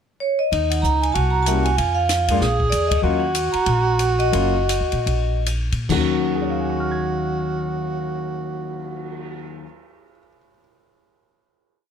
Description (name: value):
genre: jazz, small-group swing and bop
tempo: 135-192 BPM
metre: 4/4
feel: swing 61% on 8ths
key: Eb minor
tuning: A4 = 440 Hz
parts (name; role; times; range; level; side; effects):
- vibraphone with medium hard mallets; melody; 0.2-5.4 s; Db5 to Bb5; -22 LUFS; equal; none
- breathy tenor saxophone; second line; 0.5-9.6 s; Eb4 to Ab4; -25 LUFS; right 4 dB; none
- upright bass; bass; 0.5-9.6 s; Gb1 to Bb2; -23 LUFS; equal; none
- compact cocktail drum kit; drums; 0.5-9.4 s; crash cymbal, cymbal swell, hi-hat, kick drum, ride cymbal, snare drum; -28 LUFS; left 1 dB; none
- warm concert grand piano; accompaniment; 1.5-10.6 s; Eb2 to Ab6; -24 LUFS; left 6 dB; none
room: little or no reverb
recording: close, detailed microphones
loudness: -18 LUFS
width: side -7 dB against mid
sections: 0.0-0.5 pickup bar; 0.5-5.9 A section; 5.9-9.4 final chord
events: band accent 2.9; slowing down 3.0-5.9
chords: 0.0 N.C.; 0.5 Gb69 (rootless); 1.2 C7b9; 1.8 Fmadd11; 2.4 Bb7(no3); 3.0 Ebm9